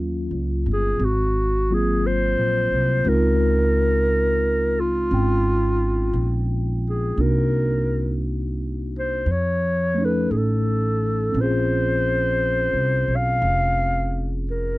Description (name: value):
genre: jazz ballad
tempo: 58 BPM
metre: 4/4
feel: swing 69% on 8ths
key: unclear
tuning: A4 = 440 Hz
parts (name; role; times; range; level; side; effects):
- mellow tine electric piano; accompaniment; 0.0-14.8 s; Gb3 to G5; -26 LUFS; left 1 dB; slow stereo tremolo
- upright bass; bass; 0.0-14.8 s; F1 to F2; -23 LUFS; equal; none
- breathy clarinet; melody; 0.7-14.8 s; F4 to F5; -22 LUFS; equal; none
room: little or no reverb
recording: dry, close 1970s-style studio recording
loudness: -19 LUFS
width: side -19 dB against mid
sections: 0.0-14.8 A section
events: none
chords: 0.0 Ebm9; 1.0 Ab13; 3.1 Dbmaj9#11; 7.2 Cm7b5; 9.3 Faug7; 11.3 Bbm9